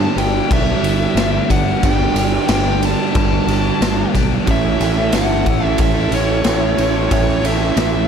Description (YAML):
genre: rock, shoegaze and dream pop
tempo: 91 BPM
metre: 4/4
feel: straight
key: A mixolydian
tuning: A4 = 441 Hz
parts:
  - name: nasal lead guitar with a parked wah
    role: melody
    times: 0.0-8.1 s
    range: C#5 to A5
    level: -22 LUFS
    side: left 1 dB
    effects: overdrive, analog delay
  - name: biting overdriven guitar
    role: riff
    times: 0.0-8.1 s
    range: G2 to E4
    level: -24 LUFS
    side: left 15 dB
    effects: wide subtle chorus
  - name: overdriven semi-hollow guitar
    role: riff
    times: 0.0-8.1 s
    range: G2 to A4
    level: -20 LUFS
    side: right 12 dB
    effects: reverse reverb
  - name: growling fingered electric bass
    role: bass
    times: 0.0-8.1 s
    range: G1 to B1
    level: -20 LUFS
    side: left 1 dB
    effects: overdrive
  - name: raw garage drum kit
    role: drums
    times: 0.2-7.9 s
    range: kick drum, ride cymbal, snare drum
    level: -19 LUFS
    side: left 1 dB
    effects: none
  - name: tambourine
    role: percussion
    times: 0.2-7.9 s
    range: none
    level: -36 LUFS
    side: right 14 dB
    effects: none
room: light reverb, small room ambience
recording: none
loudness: -14 LUFS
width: side -7 dB against mid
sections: 0.0-4.5 A section; 4.5-8.1 B section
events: none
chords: 0.0 Gadd9; 4.5 A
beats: 0.52 1.18 | 1.83 2.49 3.15 3.81 | 4.47 5.13 5.79 6.45 | 7.11 7.77